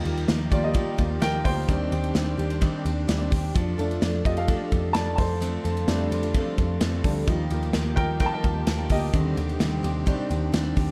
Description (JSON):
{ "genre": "piano-driven pop", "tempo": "129 BPM", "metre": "4/4", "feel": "straight", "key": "unclear", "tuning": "A4 = 440 Hz", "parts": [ { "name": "warm upright piano", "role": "accompaniment", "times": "0.0-10.9 s", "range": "D3 to A5", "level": "-32 LUFS", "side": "equal", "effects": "none" }, { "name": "warm studio string section", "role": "sustained chords", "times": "0.0-10.9 s", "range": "C3 to G4", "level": "-37 LUFS", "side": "equal", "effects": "none" }, { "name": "picked steel-string acoustic guitar", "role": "riff", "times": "0.0-10.9 s", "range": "Eb3 to A4", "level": "-34 LUFS", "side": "equal", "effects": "none" }, { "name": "vintage muted picked electric bass", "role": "bass", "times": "0.1-10.9 s", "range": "D2 to F2", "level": "-30 LUFS", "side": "equal", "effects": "none" }, { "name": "modern studio drum kit", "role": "drums", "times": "0.1-10.9 s", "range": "hi-hat, kick drum, ride cymbal, snare drum", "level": "-29 LUFS", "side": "equal", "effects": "none" } ], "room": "light reverb", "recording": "dark, warm production", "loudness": "-25 LUFS", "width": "mono", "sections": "0.0-10.9 A section", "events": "upright piano solo 0.0-10.9", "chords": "0.0 Ebadd9; 1.7 Cmadd9/Eb; 3.6 Dm/F; 5.2 F6; 7.3 Ebadd9; 9.1 Cmadd9/Eb" }